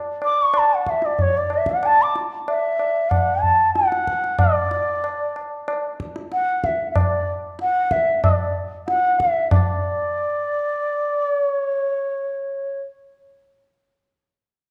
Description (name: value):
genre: indian classical, Hindustani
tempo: 94 BPM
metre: 4/4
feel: straight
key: D raga hamsadhwani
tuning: A4 = 440 Hz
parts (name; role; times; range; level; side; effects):
- mellow bansuri; melody; 0.2-12.8 s; C#5 to D6; -22 LUFS; equal; none
- tabla; percussion; 0.2-9.8 s; none; -25 LUFS; equal; none
room: wet recital hall reverb, RT60 1.6 s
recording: dark, warm production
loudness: -21 LUFS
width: mono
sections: 0.0-9.5 A section; 9.5-12.1 B section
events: none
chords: none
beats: 0.55 1.19 | 1.84 2.48 3.12 3.77 | 4.41 5.05 5.69 6.33 | 6.97 7.61 8.25 8.88 | 9.52 10.16 10.79 11.43